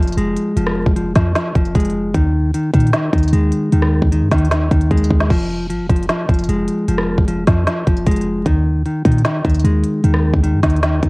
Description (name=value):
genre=hip hop, trap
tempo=152 BPM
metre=4/4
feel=half-time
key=F minor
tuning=A4 = 439 Hz
part: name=mellow electric guitar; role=accompaniment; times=0.0-11.1 s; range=Eb3 to Ab3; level=-18 LUFS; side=left 1 dB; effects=cassette tape
part: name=clean 808-style bass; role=bass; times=0.0-11.1 s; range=F1 to Bb2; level=-17 LUFS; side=equal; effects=none
part: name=organic electronic drum kit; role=drums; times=0.0-11.1 s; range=crash cymbal, hi-hat, kick drum, rim click, snare drum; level=-18 LUFS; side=equal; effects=cassette tape
room=light reverb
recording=home recording on cassette, vinyl crackle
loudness=-13 LUFS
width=side -27 dB against mid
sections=0.0-11.1 A section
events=drum fill 4.9-5.3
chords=0.0 Fm; 2.1 Ebsus4; 5.3 Fm; 8.5 Ebsus4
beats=0.17 | 0.57 0.96 1.35 1.75 | 2.15 2.54 2.93 3.33 | 3.72 4.12 4.51 4.91 | 5.30 5.70 6.09 6.49 | 6.88 7.28 7.67 8.07 | 8.46 8.86 9.25 9.64 | 10.04 10.43 10.83